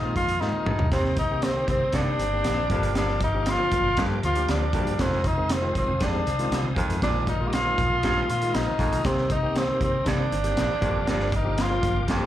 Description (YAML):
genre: uptempo 1960s-style soul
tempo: 118 BPM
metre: 4/4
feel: straight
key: C minor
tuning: A4 = 445 Hz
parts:
  - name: breathy tenor saxophone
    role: melody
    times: 0.0-12.1 s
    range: C4 to G4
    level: -26 LUFS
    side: equal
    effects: slapback echo
  - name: barky tine electric piano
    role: accompaniment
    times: 0.0-12.3 s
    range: Eb3 to Bb5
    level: -31 LUFS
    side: left 4 dB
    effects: overdrive, medium tremolo, slapback echo
  - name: bright tonewheel organ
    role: sustained chords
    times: 0.0-12.3 s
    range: Bb4 to Eb6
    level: -37 LUFS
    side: right 1 dB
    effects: fast rotary speaker, chorus vibrato
  - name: vintage muted fingered electric bass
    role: bass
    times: 0.0-12.2 s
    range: F1 to C3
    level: -29 LUFS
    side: equal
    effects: none
  - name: congas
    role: percussion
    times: 0.0-12.3 s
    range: none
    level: barely audible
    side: none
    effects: none
  - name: crunchy breakbeat drum kit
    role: drums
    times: 0.2-12.2 s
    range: hi-hat, kick drum, snare drum, toms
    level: -28 LUFS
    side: equal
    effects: none
  - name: raspy baritone saxophone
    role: riff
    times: 0.7-12.3 s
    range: D2 to C3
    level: -32 LUFS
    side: right 3 dB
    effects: slapback echo
room: light reverb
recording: live gig heard through the venue's PA, club reverb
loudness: -22 LUFS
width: side -12 dB against mid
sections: 0.9-12.3 A section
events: tine electric piano fill 0.0-0.9; drum fill 0.4-0.9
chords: 0.0 Bb7sus4; 0.9 Cm7; 2.7 Gm7; 5.0 Fm7; 7.0 Bb7sus4; 9.0 Cm7; 10.8 Gm7